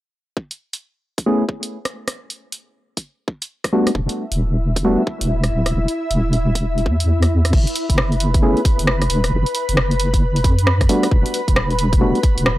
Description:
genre	UK garage, two-step garage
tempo	134 BPM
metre	4/4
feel	swing 63% on 16ths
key	F# phrygian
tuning	A4 = 440 Hz
part	electronic kick drum	drums	0.4-12.3 s	none	-17 LUFS	equal	high-pass filter on kick
part	punchy analog drum machine	drums	0.5-12.6 s	crash cymbal, hi-hat, rim click	-22 LUFS	equal	none
part	percussive organ stab	stabs	1.3-5.0, 8.4-12.2 s	G3 to G#4	-19 LUFS	equal	chorus, analog delay
part	ethereal airy pad	sustained chords	4.2-12.6 s	E4 to B5	-25 LUFS	equal	ensemble chorus, built-in reverb, sidechain pumping
part	deep soft wobble bass	bass	4.0-12.6 s	D1 to F#2	-18 LUFS	equal	chorus, sidechain pumping
room	little or no reverb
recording	dry, gritty hardware recording, transformer saturation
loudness	-16 LUFS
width	side -16 dB against mid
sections	0.4-7.5 A section; 7.5-12.6 B section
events	kick drops out 7.1-7.5; filter sweep on synth stab 7.5-12.6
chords	0.4 Amaj9; 3.7 Em11; 7.5 F#7sus4; 10.9 Em11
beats	| 0.37 0.82 1.26 1.71 | 2.16 2.61 3.06 3.50 | 3.95 4.40 4.85 5.29 | 5.74 6.19 6.64 7.08 | 7.53 7.98 8.43 8.88 | 9.32 9.77 10.22 10.67 | 11.11 11.56 12.01 12.46

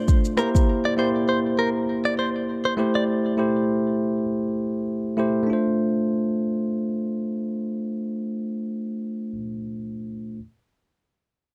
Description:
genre	afrobeats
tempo	100 BPM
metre	4/4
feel	swing 55% on 16ths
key	D minor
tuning	A4 = 441 Hz
part	bell-like tine electric piano	accompaniment	0.0-10.4 s	A3 to C5	-26 LUFS	equal	none
part	afro-pop drum kit	drums	0.1-0.7 s	kick drum, rim click, shaker	-21 LUFS	equal	none
part	direct-recorded clean electric guitar	riff	0.4-3.0 s	Bb4 to D5	-29 LUFS	equal	spring reverb, delay
room	little or no reverb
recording	dark, warm production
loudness	-24 LUFS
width	mono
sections	0.0-5.5 A section; 5.5-7.9 B section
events	none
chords	0.4 C7; 2.8 Am7; 5.5 Dm7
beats	0.08 | 0.68 1.28 1.88 2.48 | 3.08 3.68 4.28 4.88 | 5.48 6.08 6.68 7.28

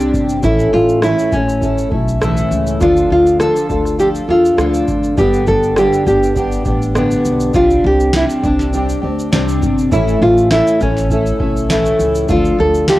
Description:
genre	acoustic pop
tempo	101 BPM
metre	4/4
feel	swing 55% on 16ths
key	unclear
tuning	A4 = 439 Hz
part	fingerpicked plugged-in steel-string acoustic guitar	accompaniment	0.0-13.0 s	G2 to A4	-16 LUFS	equal	double-tracked left and right
part	upright bass	bass	0.0-13.0 s	F1 to E2	-19 LUFS	equal	none
part	booming analog drum machine	drums	0.0-13.0 s	kick drum, rim click, shaker, snare drum	-21 LUFS	equal	none
part	nylon-string guitar	melody	0.4-13.0 s	C#4 to A4	-14 LUFS	equal	cassette tape
room	light reverb, studio reverb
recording	home recording on cassette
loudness	-12 LUFS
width	side -16 dB against mid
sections	0.0-13.0 A section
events	none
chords	0.4 A; 2.8 Dm; 5.2 G; 7.5 Csus2; 9.9 A; 12.3 Dm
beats	| 0.44 1.03 1.62 2.21 | 2.81 3.40 3.99 4.59 | 5.18 5.77 6.36 6.96 | 7.55 8.14 8.73 9.33 | 9.92 10.51 11.10 11.70 | 12.29 12.88

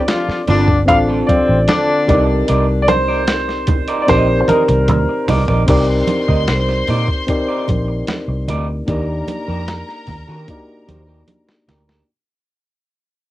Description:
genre	lush 1970s-style soul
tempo	75 BPM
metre	4/4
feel	straight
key	C dorian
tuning	A4 = 440 Hz
part	warm grand piano	melody	0.0-5.2 s	Bb4 to F5	-18 LUFS	equal	cassette tape, tape echo
part	mellow reed electric piano	accompaniment	0.0-12.1 s	Bb3 to D5	-20 LUFS	left 1 dB	cassette tape
part	electric guitar through a small old amp	riff	0.0-12.0 s	C4 to Eb5	-23 LUFS	right 3 dB	wide subtle chorus, cassette tape
part	mellow horn section	stabs	0.1-2.2 s	C3 to F4	-18 LUFS	left 2 dB	cassette tape, tape echo
part	boom bap sampler-style drum kit	drums	0.1-12.1 s	crash cymbal, hi-hat, kick drum, snare drum, toms	-20 LUFS	equal	cassette tape
part	congas	percussion	0.1-11.9 s	none	-25 LUFS	right 4 dB	none
part	vintage muted fingered electric bass	bass	0.3-12.0 s	G1 to Eb3	-18 LUFS	equal	none
part	warm studio string section	second line	5.7-11.6 s	Bb4 to C6	-26 LUFS	equal	cassette tape
room	light reverb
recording	home recording on cassette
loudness	-13 LUFS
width	side -15 dB against mid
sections	0.0-5.7 A section; 5.7-12.1 B section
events	drum fill 4.1-5.7, 10.5-12.1; fade-out 5.7-12.1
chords	0.0 Dm7; 2.1 Cm9; 8.9 Ebmaj7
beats	0.08 0.88 1.68 | 2.48 3.28 4.08 4.88 | 5.68 6.48 7.28 8.08 | 8.88 9.68 10.48 11.28

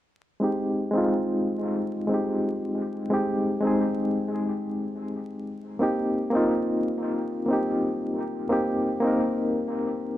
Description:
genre	trip hop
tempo	89 BPM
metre	4/4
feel	swing 56% on 16ths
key	F minor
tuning	A4 = 440 Hz
part	barky reed electric piano	accompaniment	0.4-10.2 s	Ab3 to Bb4	-24 LUFS	equal	tremolo, low-pass filter, tape echo
room	moderate plate reverb, RT60 2.6 s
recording	echo-heavy mix, vinyl crackle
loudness	-24 LUFS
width	side -13 dB against mid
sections	0.4-10.2 A section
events	filter sweep on reed electric piano 0.4-10.2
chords	0.4 Fm7; 5.8 Cm7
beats	| 0.42 1.09 1.76 2.44 | 3.11 3.79 4.46 5.13 | 5.81 6.48 7.16 7.83 | 8.51 9.18 9.86

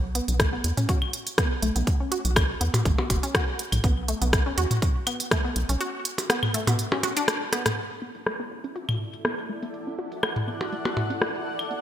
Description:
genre	minimal techno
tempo	122 BPM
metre	4/4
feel	swing 54% on 16ths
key	B minor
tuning	A4 = 440 Hz
part	rubbery square bass	bass	0.0-11.8 s	F#1 to E2	-27 LUFS	equal	sidechain pumping, high-pass filter
part	resonant blip pluck	riff	0.2-11.8 s	A3 to F#4	-32 LUFS	equal	chorus, sidechain pumping, ping-pong delay
part	garage drum kit	drums	0.2-11.8 s	hi-hat, rim click	-27 LUFS	equal	low-pass filter on hats, low-pass filter on snare, low-pass filter on room
part	electronic kick drum	drums	0.4-5.4 s	none	-24 LUFS	equal	none
part	electronic toms, claves and percussion blips	percussion	0.8-11.7 s	none	-28 LUFS	left 1 dB	ping-pong delay
part	granular cloud pad	texture	8.7-11.8 s	E4 to F#5	-33 LUFS	equal	built-in reverb, sidechain pumping
room	moderate lush hall reverb, RT60 1.9 s, digital ambience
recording	bright 1980s-style digital production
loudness	-23 LUFS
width	side -11 dB against mid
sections	0.0-7.8 A section; 7.8-11.8 B section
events	filter sweep on synth arpeggio sound 0.0-7.8; drum fill 7.5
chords	0.0 B5; 7.8 Bm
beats	0.40 0.89 1.38 | 1.87 2.36 2.85 3.35 | 3.84 4.33 4.82 5.31 | 5.81 6.30 6.79 7.28 | 7.77 8.27 8.76 9.25 | 9.74 10.23 10.72 11.22 | 11.71

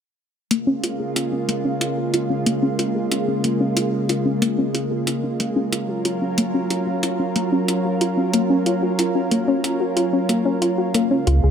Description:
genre	synthwave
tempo	92 BPM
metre	4/4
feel	straight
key	Db major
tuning	A4 = 438 Hz
part	lush unison pad	sustained chords	0.5-11.5 s	Db3 to Bb4	-22 LUFS	right 1 dB	chorus
part	soft round pluck	arpeggios	0.5-11.5 s	Bb3 to Ab4	-22 LUFS	left 2 dB	chorus, tape echo
part	electronic hi-hat	drums	0.5-11.4 s	none	-25 LUFS	right 1 dB	overdrive
part	round analog bass	bass	11.3-11.5 s	Db2	-14 LUFS	right 1 dB	none
room	moderate lush hall reverb, RT60 2.3 s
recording	none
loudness	-18 LUFS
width	side -8 dB against mid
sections	0.5-11.5 A section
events	filter sweep on synth arpeggio sound 0.5-11.5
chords	0.5 Db6; 5.7 Gbmaj7; 10.9 Db6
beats	| 0.51 1.16 1.81 2.47 | 3.12 3.77 4.42 5.08 | 5.73 6.38 7.03 7.68 | 8.34 8.99 9.64 10.29 | 10.95

